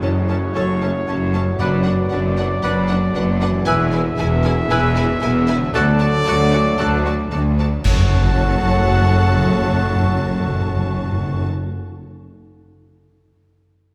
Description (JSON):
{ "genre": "cinematic, heroic adventure film score", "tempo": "114 BPM", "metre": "4/4", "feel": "straight", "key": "F# minor", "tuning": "A4 = 440 Hz", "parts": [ { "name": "rich symphonic violin section", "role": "melody", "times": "0.0-11.5 s", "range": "F#5 to A5", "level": "-35 LUFS", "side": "equal", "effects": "none" }, { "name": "warm symphonic violin section", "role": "second line", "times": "0.0-11.5 s", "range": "B4 to D5", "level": "-34 LUFS", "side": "equal", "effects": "none" }, { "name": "rich symphonic viola section", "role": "accompaniment", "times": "0.0-11.5 s", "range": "C#4 to F#4", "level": "-33 LUFS", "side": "equal", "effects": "none" }, { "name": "dark French horn section", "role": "sustained chords", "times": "0.0-11.5 s", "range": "A3 to A4", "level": "-32 LUFS", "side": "equal", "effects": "none" }, { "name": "mellow trombone section", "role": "sustained chords", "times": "0.0-11.5 s", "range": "B2 to F#3", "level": "-31 LUFS", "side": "equal", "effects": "none" }, { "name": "concert harp", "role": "arpeggios", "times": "0.0-11.8 s", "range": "F#2 to A5", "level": "-35 LUFS", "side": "equal", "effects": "none" }, { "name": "warm trumpet", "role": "stabs", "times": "0.0-11.5 s", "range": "C#5 to F#5", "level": "-28 LUFS", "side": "equal", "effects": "none" }, { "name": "clear symphonic double bass section", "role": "bass", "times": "0.0-11.5 s", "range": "E1 to D2", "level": "-24 LUFS", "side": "equal", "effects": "none" }, { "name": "rich symphonic cello section", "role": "bass", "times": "0.0-11.5 s", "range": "D2 to F#2", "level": "-24 LUFS", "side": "equal", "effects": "none" }, { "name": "bright small flute group", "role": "second line", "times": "0.5-11.5 s", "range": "G#5 to C#6", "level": "-33 LUFS", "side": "equal", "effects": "none" }, { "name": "warm oboe", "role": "second line", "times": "0.5-11.5 s", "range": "C#5 to F#5", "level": "-31 LUFS", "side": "equal", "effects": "none" }, { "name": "mellow clarinet", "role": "second line", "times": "0.6-11.5 s", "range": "A4 to B4", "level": "-32 LUFS", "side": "equal", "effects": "none" }, { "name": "timpani", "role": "percussion", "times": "1.6-2.3, 7.9-11.5 s", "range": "F#2", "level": "-24 LUFS", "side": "equal", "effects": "none" }, { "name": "clash cymbals and concert bass drum", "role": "percussion", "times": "7.8-8.9 s", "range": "none", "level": "-26 LUFS", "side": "equal", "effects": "none" } ], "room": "moderate scoring stage reverb, RT60 2.2 s", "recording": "none", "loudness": "-18 LUFS", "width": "mono", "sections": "0.0-7.9 A section; 7.9-12.1 B section", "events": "band accent 7.9-8.4", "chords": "0.0 F#m; 1.6 Bm/F#; 3.7 E; 5.7 D; 7.9 F#m", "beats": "0.02 0.55 1.07 | 1.60 2.12 2.64 3.16 | 3.68 4.19 4.71 5.23 | 5.75 6.27 6.79 7.32 | 7.86 8.38 8.91 9.44 | 9.97 10.49 11.02 11.54" }